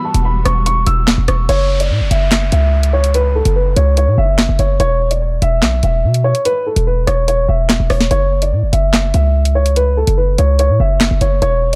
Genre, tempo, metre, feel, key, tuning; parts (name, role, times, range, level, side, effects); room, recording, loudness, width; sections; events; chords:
hip hop, drill; 145 BPM; 4/4; half-time; F# phrygian; A4 = 439 Hz
dark upright piano; melody; 0.0-11.8 s; A4 to E6; -20 LUFS; equal; low-pass filter
dark symphonic string section; sustained chords; 0.0-1.5 s; E3 to F#4; -29 LUFS; equal
hard-hitting 808-style bass; bass; 0.1-11.8 s; E1 to B2; -16 LUFS; equal
drill drum kit; drums; 0.1-11.8 s; handclaps, hi-hat, rim click, snare drum; -20 LUFS; equal; overdrive
downlifter; sound effects; 1.5-4.8 s; -32 LUFS; equal
little or no reverb; dark, warm production; -14 LUFS; mono
0.0-1.5 A section; 1.5-11.8 B section
0.0 Emadd9; 1.5 F#7(no3); 4.8 E5; 8.1 F#7(no3)